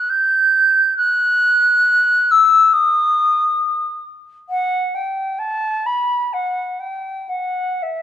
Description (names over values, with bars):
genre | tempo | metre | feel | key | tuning
classical, free, expressive piece for unaccompanied flute | 56-71 BPM | 4/4 | rubato | unclear | A4 = 435 Hz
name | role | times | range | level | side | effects
mellow hollow silver concert flute | solo | 0.0-8.0 s | E5 to G6 | -14 LUFS | equal | none
room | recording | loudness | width
wet recital hall reverb, RT60 1.7 s | dark, warm production | -14 LUFS | side -10 dB against mid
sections
0.0-8.0 A section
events
none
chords
none